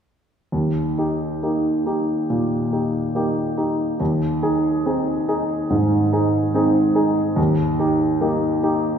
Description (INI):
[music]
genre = classical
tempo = 71 BPM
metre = 4/4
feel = rubato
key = Eb major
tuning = A4 = 440 Hz
[part]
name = clear grand piano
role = accompaniment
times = 0.5-9.0 s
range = Eb2 to Ab4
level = -18 LUFS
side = equal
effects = none
[sound]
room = wet recital hall reverb, RT60 1.6 s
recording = heard from further back in the room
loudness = -18 LUFS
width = side -7 dB against mid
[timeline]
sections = 0.5-9.0 A section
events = none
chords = 0.5 Eb; 4.0 Ab/Eb; 7.4 Eb